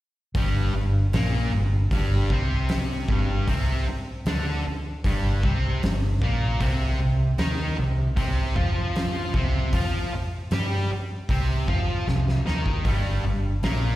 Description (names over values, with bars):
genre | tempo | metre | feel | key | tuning
blues rock power trio and southern rock | 77 BPM | 4/4 | straight | unclear | A4 = 439 Hz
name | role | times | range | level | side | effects
vintage muted fingered electric bass | bass | 0.3-14.0 s | G1 to G2 | -24 LUFS | equal | none
huge arena drum kit | drums | 0.3-13.8 s | hi-hat, kick drum, snare drum | -28 LUFS | equal | none
sludgy distorted guitar | riff | 0.4-14.0 s | G2 to G4 | -27 LUFS | equal | overdrive, slapback echo
room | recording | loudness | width
small room reverb | live gig heard through the venue's PA, recital hall reverb | -22 LUFS | side -15 dB against mid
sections
0.3-14.0 A section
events
drum fill 12.1-12.9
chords
0.3 G5; 6.6 C5; 12.9 G5